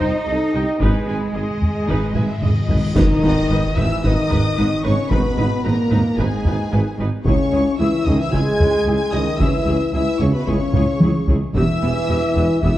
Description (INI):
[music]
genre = cinematic, epic orchestral film score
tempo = 112 BPM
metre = 4/4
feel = straight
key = G# minor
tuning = A4 = 440 Hz
[part]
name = warm symphonic violin section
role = melody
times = 0.0-12.8 s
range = G#4 to G#6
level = -31 LUFS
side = left 3 dB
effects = none
[part]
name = warm symphonic violin section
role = second line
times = 0.0-12.8 s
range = G4 to G#5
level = -28 LUFS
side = left 2 dB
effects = none
[part]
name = rich symphonic viola section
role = accompaniment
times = 0.0-12.7 s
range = B3 to G#5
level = -29 LUFS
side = equal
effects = none
[part]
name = mellow French horn section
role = sustained chords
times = 0.0-12.8 s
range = G#3 to G#4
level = -24 LUFS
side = left 3 dB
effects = none
[part]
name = dark trumpet section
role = stabs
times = 0.0-2.4 s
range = G#4 to Eb5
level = -28 LUFS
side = right 2 dB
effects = none
[part]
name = mellow tuba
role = bass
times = 0.0-12.7 s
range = E1 to C#2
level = -25 LUFS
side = right 2 dB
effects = none
[part]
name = rich symphonic cello section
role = bass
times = 0.0-12.7 s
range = C#2 to Eb4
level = -26 LUFS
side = right 1 dB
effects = none
[part]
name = rich symphonic double bass section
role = bass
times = 0.0-12.7 s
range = E1 to C#2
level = -24 LUFS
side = right 1 dB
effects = none
[part]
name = taiko ensemble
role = drums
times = 0.0-12.8 s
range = none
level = -20 LUFS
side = equal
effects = none
[part]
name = timpani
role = percussion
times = 0.8-3.7 s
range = G#2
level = -25 LUFS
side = left 1 dB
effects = none
[part]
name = cymbal swell and impact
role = sound effects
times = 2.4-5.1 s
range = none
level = -33 LUFS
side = equal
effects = none
[part]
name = dark trombone section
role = sustained chords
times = 3.0-12.8 s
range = G#2 to G#3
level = -25 LUFS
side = right 2 dB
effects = none
[part]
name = clash cymbals and concert bass drum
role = percussion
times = 3.0-4.0 s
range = none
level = -26 LUFS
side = equal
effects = none
[sound]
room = moderate scoring stage reverb, RT60 1.7 s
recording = worn, warbling old tape, cassette tape, warbly pitch drift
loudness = -16 LUFS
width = side -14 dB against mid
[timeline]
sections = 0.0-3.0 A section; 3.0-12.8 B section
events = timpani fill 0.8-3.0; drum fill 2.2-3.0, 10.7-11.5; cymbal swell 2.4-3.0; band accent 3.0-3.5; impact 3.0-5.1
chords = 0.0 Cm; 0.8 G#m; 7.2 C#m; 11.5 Em